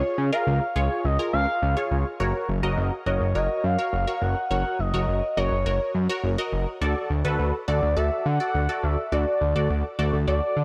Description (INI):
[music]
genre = synth-pop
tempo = 104 BPM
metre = 4/4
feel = straight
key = unclear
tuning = A4 = 440 Hz
[part]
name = expressive portamento lead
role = melody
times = 0.0-10.6 s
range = C#5 to F#5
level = -30 LUFS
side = equal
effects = chorus, shimmer reverb, analog delay
[part]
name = funky polysynth comp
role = accompaniment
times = 0.0-10.6 s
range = E#4 to D#5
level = -31 LUFS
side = equal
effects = chorus, shimmer reverb
[part]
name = fat analog bass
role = bass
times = 0.0-10.6 s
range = F#1 to D3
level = -26 LUFS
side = equal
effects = none
[sound]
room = light reverb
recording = none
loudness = -24 LUFS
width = mono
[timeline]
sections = 0.0-2.2 A section; 2.2-10.6 B section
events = none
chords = 0.0 C#; 2.2 F#; 6.8 D